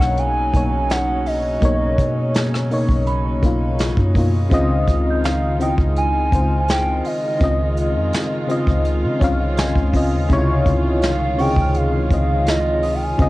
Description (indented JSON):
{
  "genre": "contemporary R&B",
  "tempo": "83 BPM",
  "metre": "4/4",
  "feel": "straight",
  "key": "unclear",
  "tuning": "A4 = 440 Hz",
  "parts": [
    { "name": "gliding portamento lead", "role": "melody", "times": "0.0-13.3 s", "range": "D#5 to Ab5", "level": "-23 LUFS", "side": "right 1 dB", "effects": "chorus, cassette tape, analog delay" },
    { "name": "FM electric piano with tremolo", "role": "accompaniment", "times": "0.0-13.3 s", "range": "B2 to Ab5", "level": "-21 LUFS", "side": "left 2 dB", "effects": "cassette tape" },
    { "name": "warm studio string section", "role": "sustained chords", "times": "0.0-13.3 s", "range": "C#3 to F4", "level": "-27 LUFS", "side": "right 2 dB", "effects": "cassette tape" },
    { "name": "soft 808-style bass", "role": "bass", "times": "0.0-13.3 s", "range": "B1 to Db3", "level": "-20 LUFS", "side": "equal", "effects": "none" },
    { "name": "vintage brush drum kit", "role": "drums", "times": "0.0-13.3 s", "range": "hi-hat, kick drum, rim click, snare drum", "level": "-21 LUFS", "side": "equal", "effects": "cassette tape" },
    { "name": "worn celesta", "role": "texture", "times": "0.0-6.8, 11.4-13.3 s", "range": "B5 to G6", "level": "-33 LUFS", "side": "right 4 dB", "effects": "stereo widening, cassette tape, analog delay" }
  ],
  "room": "small room ambience",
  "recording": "home recording on cassette",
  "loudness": "-16 LUFS",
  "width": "side -18 dB against mid",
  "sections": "0.0-13.3 A section",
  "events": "FM electric piano fill 8.9-10.3",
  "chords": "0.0 Bmaj9; 4.5 Dbmaj9",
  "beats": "0.18 0.90 | 1.62 2.35 3.07 3.79 | 4.51 5.24 5.96 6.68 | 7.41 8.13 8.85 9.57 | 10.30 11.02 11.74 12.46 | 13.19"
}